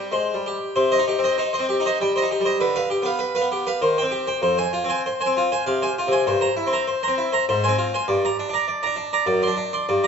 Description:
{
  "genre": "classical, baroque-style suite movement for harpsichord",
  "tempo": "99 BPM",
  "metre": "3/4",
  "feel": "rubato",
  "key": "C minor",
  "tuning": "A4 = 442 Hz",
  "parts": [
    { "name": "harpsichord", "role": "solo", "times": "0.0-10.1 s", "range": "F2 to C6", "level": "-19 LUFS", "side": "equal", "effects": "none" }
  ],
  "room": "moderate recital hall reverb, RT60 1.4 s",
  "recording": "nothing above 7.8 kHz",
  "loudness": "-19 LUFS",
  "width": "side -6 dB against mid",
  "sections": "0.8-10.1 A section",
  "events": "none",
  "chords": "0.0 C5; 0.8 Cm; 2.6 G7/D; 3.8 Cm/Eb; 4.4 Fm; 6.3 C7/G; 7.5 Fm/Ab; 8.1 Gm; 9.3 D7/F#"
}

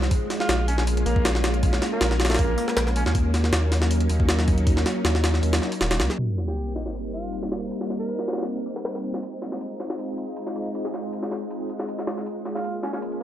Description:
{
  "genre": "drum and bass, jungle",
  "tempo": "158 BPM",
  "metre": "4/4",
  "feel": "straight",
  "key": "C phrygian",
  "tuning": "A4 = 444 Hz",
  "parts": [
    { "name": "soft string machine", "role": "sustained chords", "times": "0.0-13.2 s", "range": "Gb3 to F4", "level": "-28 LUFS", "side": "equal", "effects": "ensemble chorus" },
    { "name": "saturated sub bass", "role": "bass", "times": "0.0-6.1 s", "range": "Eb1 to Eb2", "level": "-23 LUFS", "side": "equal", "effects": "none" },
    { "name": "jungle sampler-style drum kit", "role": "drums", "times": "0.0-13.2 s", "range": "hi-hat, kick drum, snare drum", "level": "-25 LUFS", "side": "equal", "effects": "high-pass filter on hats, studio reverb, high-pass filter on snare, high-pass filter on kick" },
    { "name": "breathy alto saxophone", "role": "melody", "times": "0.4-3.1, 6.5-8.4, 12.6-13.2 s", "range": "Bb3 to Bb4", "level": "-31 LUFS", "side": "right 2 dB", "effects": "dub echo" },
    { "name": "sub drop", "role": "sound effects", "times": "6.2-7.7 s", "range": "none", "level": "-29 LUFS", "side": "equal", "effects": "none" }
  ],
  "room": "little or no reverb",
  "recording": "dry, gritty hardware recording, low-pass filter",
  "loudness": "-22 LUFS",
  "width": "side -12 dB against mid",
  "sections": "0.0-6.2 A section; 6.2-13.2 B section",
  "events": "drop 0.0-6.2; impact 6.2-7.7",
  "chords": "0.1 Bbm7; 3.1 Ebm7; 6.2 Cm7; 9.2 Fm7; 12.3 Bbm7"
}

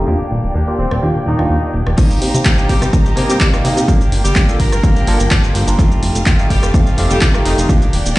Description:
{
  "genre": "filtered disco house",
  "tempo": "126 BPM",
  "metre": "4/4",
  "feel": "straight",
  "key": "C dorian",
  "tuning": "A4 = 440 Hz",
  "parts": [
    { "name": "brilliant horn section", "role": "melody", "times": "0.0-7.7 s", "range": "Eb3 to Bb4", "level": "-24 LUFS", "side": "equal", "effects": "sidechain pumping, low-pass filter, ping-pong delay" },
    { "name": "barky tine electric piano", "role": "accompaniment", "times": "0.0-7.8 s", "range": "A3 to D5", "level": "-22 LUFS", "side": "equal", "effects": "phaser, vintage 12-bit sampler grit, sidechain pumping, low-pass filter" },
    { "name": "warm studio violin section", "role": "sustained chords", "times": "0.0-8.2 s", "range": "F4 to Bb5", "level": "-27 LUFS", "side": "right 1 dB", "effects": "sidechain pumping, low-pass filter" },
    { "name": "direct-recorded clean electric guitar", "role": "riff", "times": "0.0-8.2 s", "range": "Eb3 to G4", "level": "-25 LUFS", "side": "left 1 dB", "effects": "sidechain pumping, low-pass filter" },
    { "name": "plucky analog bass", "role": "bass", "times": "0.0-8.2 s", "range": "Eb1 to C3", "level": "-17 LUFS", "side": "equal", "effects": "sidechain pumping, low-pass filter" },
    { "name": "punchy analog drum machine", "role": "drums", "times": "0.9-8.2 s", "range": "crash cymbal, handclaps, hi-hat, rim click, shaker", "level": "-21 LUFS", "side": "equal", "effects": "sidechain pumping on hats, sidechain pumping on cymbals, sidechain pumping on perc" },
    { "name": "electronic kick drum", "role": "drums", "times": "2.0-7.8 s", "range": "none", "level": "-13 LUFS", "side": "equal", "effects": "none" }
  ],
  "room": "little or no reverb",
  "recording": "played on a big sound system in a bare room, stone room reverb, nothing above 10.8 kHz",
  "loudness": "-11 LUFS",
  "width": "side -18 dB against mid",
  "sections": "0.0-2.0 A section; 2.0-8.2 B section",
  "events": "filter sweep on drum 0.0-2.0; drop 2.0-8.2",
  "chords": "0.1 Ebmaj7; 2.0 Cm7; 3.9 Gm7; 5.8 F7"
}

